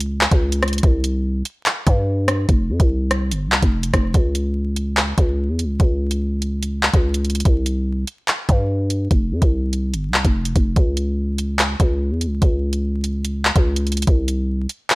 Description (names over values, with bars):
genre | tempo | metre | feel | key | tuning
hip hop, drill | 145 BPM | 4/4 | half-time | unclear | A4 = 440 Hz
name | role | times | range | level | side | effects
growling 808-style bass | bass | 0.0-14.7 s | F1 to G2 | -20 LUFS | equal | none
drill drum kit | drums | 0.0-14.9 s | handclaps, hi-hat, kick drum, rim click | -17 LUFS | equal | none
room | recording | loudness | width
digital ambience | vinyl crackle | -17 LUFS | side -22 dB against mid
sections
0.0-4.1 A section; 4.1-14.9 B section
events
none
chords
none